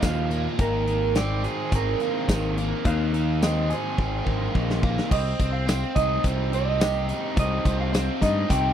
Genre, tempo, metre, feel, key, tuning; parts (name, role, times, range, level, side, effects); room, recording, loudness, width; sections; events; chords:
indie rock; 106 BPM; 4/4; straight; C minor; A4 = 440 Hz
electric guitar through a small old amp; melody; 0.0-8.7 s; Bb4 to G5; -28 LUFS; right 3 dB; phaser, tape echo
biting overdriven guitar; riff; 0.0-8.7 s; Eb3 to Ab4; -27 LUFS; equal
growling picked electric bass; bass; 0.0-8.7 s; Ab1 to G2; -26 LUFS; equal; overdrive
big rock drum kit; drums; 0.0-8.6 s; crash cymbal, hi-hat, kick drum, snare drum, tambourine; -25 LUFS; equal
little or no reverb; dry, close 1970s-style studio recording; -22 LUFS; side -9 dB against mid
0.0-5.1 A section; 5.1-8.7 B section
drum fill 4.0-5.1
0.0 Ebadd9; 0.6 Abadd9; 5.1 Cm